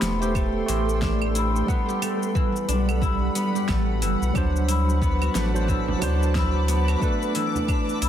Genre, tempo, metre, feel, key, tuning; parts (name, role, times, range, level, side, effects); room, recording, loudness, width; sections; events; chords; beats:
organic downtempo; 90 BPM; 4/4; swing 60% on 16ths; A4 = 440 Hz
tine electric piano; accompaniment; 0.0-8.1 s; F#3 to C6; -27 LUFS; right 3 dB; medium tremolo, sidechain pumping, ping-pong delay
granular cloud pad; sustained chords; 0.0-8.1 s; G3 to D6; -31 LUFS; left 1 dB; built-in reverb, sidechain pumping
guzheng; arpeggios; 0.0-8.1 s; E3 to G4; -29 LUFS; left 3 dB; ping-pong delay
warm sub bass; bass; 0.0-8.1 s; E1 to D2; -24 LUFS; equal; sidechain pumping
deep house drum kit; drums; 0.0-8.1 s; claves, hi-hat, shaker, snare drum; -31 LUFS; equal
electronic kick drum; drums; 0.3-7.8 s; -25 LUFS; equal
twinkling granular texture; texture; 4.6-8.1 s; B4; -36 LUFS; equal; built-in reverb
frame drum; percussion; 5.9-7.7 s; -33 LUFS; right 3 dB
light reverb; dense, heavily limited modern master; -21 LUFS; side -10 dB against mid
0.0-8.1 A section
0.0 Am7; 1.7 Gmaj7; 4.3 D7; 7.0 Bm7
0.35 1.02 | 1.68 2.35 3.02 3.68 | 4.35 5.02 5.68 6.35 | 7.02 7.68